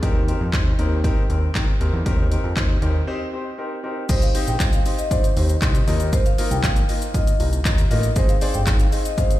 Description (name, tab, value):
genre	dance-pop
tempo	118 BPM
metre	4/4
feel	straight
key	Eb major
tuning	A4 = 441 Hz
part	warm grand piano	accompaniment	0.0-9.3 s	Bb3 to F5	-27 LUFS	left 2 dB	sidechain pumping
part	fat analog bass	bass	0.0-8.9 s	G1 to Eb3	-21 LUFS	equal	sidechain pumping
part	house drum kit	drums	0.0-9.4 s	crash cymbal, handclaps, hi-hat, kick drum, shaker	-20 LUFS	equal	none
part	marimba with soft mallets	melody	4.1-9.4 s	C5 to G5	-27 LUFS	equal	ping-pong delay
room	little or no reverb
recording	played on a big sound system in a bare room, stone room reverb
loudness	-18 LUFS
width	side -15 dB against mid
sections	0.0-4.1 A section; 4.1-9.4 B section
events	break 3.1-4.1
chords	0.0 Eb6; 4.1 Cm; 5.9 Ebsus2; 8.2 Ab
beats	| 0.03 0.54 1.04 1.55 | 2.06 2.57 3.08 3.59 | 4.09 4.60 5.11 5.62 | 6.13 6.64 7.14 7.65 | 8.16 8.67 9.18